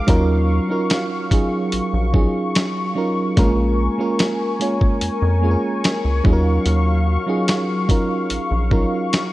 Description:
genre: contemporary R&B.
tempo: 73 BPM.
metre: 4/4.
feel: straight.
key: Eb minor.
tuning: A4 = 441 Hz.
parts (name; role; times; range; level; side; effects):
FM electric piano with auto-pan; accompaniment; 0.0-9.3 s; Gb3 to Db5; -21 LUFS; right 2 dB; none.
warm analog pad; sustained chords; 0.0-9.3 s; Gb3 to Db6; -25 LUFS; left 2 dB; chorus, sidechain pumping.
rubbery square bass; bass; 0.1-8.9 s; Bb1 to F2; -18 LUFS; equal; none.
dusty soul sampler-style drum kit; drums; 0.1-9.3 s; hi-hat, kick drum, snare drum; -19 LUFS; equal; none.
room: light reverb.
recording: worn, warbling old tape, cassette tape, warbly pitch drift.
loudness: -16 LUFS.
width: side -17 dB against mid.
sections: 0.0-9.3 A section.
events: none.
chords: 0.1 Ebm9; 3.4 Bbm7; 6.2 Ebm9.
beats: | 0.08 0.90 1.73 2.55 | 3.37 4.19 5.01 5.83 | 6.66 7.48 8.30 9.12.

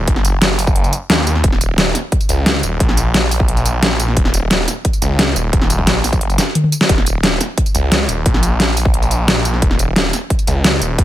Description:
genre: dark technical drum and bass.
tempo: 176 BPM.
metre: 4/4.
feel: straight.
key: Eb minor.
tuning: A4 = 440 Hz.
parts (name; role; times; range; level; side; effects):
snarling distorted saw bass; bass; 0.0-11.0 s; Eb1 to Eb2; -17 LUFS; equal; distortion, overdrive, sidechain pumping.
dubstep drum kit; drums; 0.1-11.0 s; hi-hat, snare drum, tambourine, toms; -16 LUFS; equal; overdrive.
electronic kick drum; drums; 0.1-11.0 s; none; -16 LUFS; equal; overdrive.
room: little or no reverb.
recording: none.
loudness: -12 LUFS.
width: side -13 dB against mid.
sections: 0.0-11.0 A section.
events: drum fill 6.4-6.9.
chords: none.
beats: | 0.08 0.42 0.76 1.10 | 1.44 1.78 2.12 2.46 | 2.80 3.14 3.48 3.83 | 4.17 4.51 4.85 5.19 | 5.53 5.87 6.21 6.55 | 6.89 7.24 7.58 7.92 | 8.26 8.60 8.94 9.28 | 9.62 9.96 10.30 10.64 | 10.98.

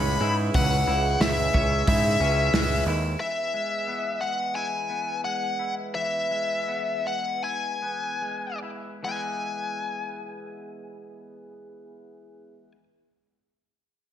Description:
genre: post-rock.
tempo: 71-90 BPM.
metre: 4/4.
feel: straight.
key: E major.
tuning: A4 = 440 Hz.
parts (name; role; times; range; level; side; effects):
bluesy overdriven lead guitar; melody; 0.0-12.7 s; E5 to B5; -27 LUFS; left 2 dB; distortion, slapback echo.
warm French horn section; sustained chords; 0.0-12.7 s; E2 to B4; -38 LUFS; right 2 dB; none.
twangy electric guitar; arpeggios; 0.0-12.8 s; C#3 to E4; -34 LUFS; left 1 dB; slapback echo.
vibraphone with hard mallets; arpeggios; 0.0-2.9 s; B4 to C#5; -35 LUFS; right 4 dB; slapback echo.
growling picked electric bass; bass; 0.0-3.1 s; C#2 to G#2; -25 LUFS; right 1 dB; overdrive.
loose indie drum kit; drums; 0.5-2.7 s; hi-hat, kick drum, snare drum; -27 LUFS; right 1 dB; none.
room: moderate lush hall reverb, RT60 1.7 s, studio reverb.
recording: big arena sound.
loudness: -24 LUFS.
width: side -10 dB against mid.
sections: 0.0-3.2 A section; 3.2-9.0 B section; 9.0-12.4 C section.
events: slowing down 3.2-9.0.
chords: 0.0 C#m; 3.2 E.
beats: | 0.54 1.21 1.87 2.54 | 3.20 3.87 4.55 5.24 | 5.95 6.68 7.44 8.22 | 9.04 9.88 10.72 11.56.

